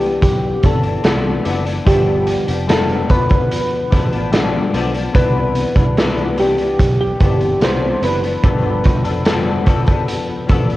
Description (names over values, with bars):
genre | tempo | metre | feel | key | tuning
indie pop, bedroom pop | 73 BPM | 4/4 | straight | C major | A4 = 440 Hz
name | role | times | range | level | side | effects
soft electric-piano-like synth keys | melody | 0.0-10.8 s | G4 to C5 | -20 LUFS | equal | analog chorus, tape echo
semi-hollow electric guitar | accompaniment | 0.0-10.8 s | G2 to A4 | -21 LUFS | left 5 dB | ensemble chorus, vibrato effect, cassette tape
vintage muted picked electric bass | bass | 0.0-10.8 s | F1 to C2 | -23 LUFS | right 1 dB | tube saturation
raw garage drum kit | drums | 0.0-10.8 s | hi-hat, kick drum, snare drum | -16 LUFS | right 1 dB | cassette tape
room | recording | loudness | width
light reverb | home recording on cassette | -13 LUFS | side -16 dB against mid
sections
0.0-10.8 A section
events
none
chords
0.0 Cmaj9; 1.9 G7; 5.1 Cmaj9; 8.4 G9